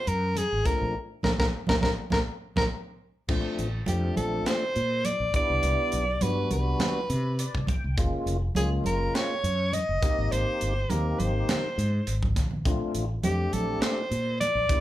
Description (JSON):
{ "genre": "electric jazz fusion", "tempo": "102 BPM", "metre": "4/4", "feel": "swing 53% on 16ths", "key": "Bb major", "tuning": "A4 = 440 Hz", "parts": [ { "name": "warm soprano saxophone", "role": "melody", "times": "0.0-14.8 s", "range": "G4 to Eb5", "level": "-28 LUFS", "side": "equal", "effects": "none" }, { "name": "mellow fretless electric bass", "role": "bass", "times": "0.1-14.7 s", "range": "F1 to C3", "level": "-29 LUFS", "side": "equal", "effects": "none" }, { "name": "tight funk drum kit", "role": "drums", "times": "0.1-14.8 s", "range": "crash cymbal, hi-hat, kick drum, snare drum", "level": "-29 LUFS", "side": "equal", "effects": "none" }, { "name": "congas", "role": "percussion", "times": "0.4-14.6 s", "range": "none", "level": "-33 LUFS", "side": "right 2 dB", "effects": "none" }, { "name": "tonewheel organ", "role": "accompaniment", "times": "0.7-14.8 s", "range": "F3 to G5", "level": "-33 LUFS", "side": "left 2 dB", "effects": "overdrive, chorus vibrato, slow rotary speaker" } ], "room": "moderate large studio reverb, RT60 0.8 s", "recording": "band playing live in one room", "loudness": "-24 LUFS", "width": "side -14 dB against mid", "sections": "0.0-3.3 A section; 3.3-14.8 A section", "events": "band accent 0.9-3.3; drum fill 2.1-3.3, 12.2-12.7; tonewheel organ fill 7.1-8.0", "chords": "0.0 Gbadd9; 0.7 Bbmaj9; 5.3 Cmaj9; 8.0 Gbmaj9; 10.0 Abmaj9; 12.7 Bbmaj9" }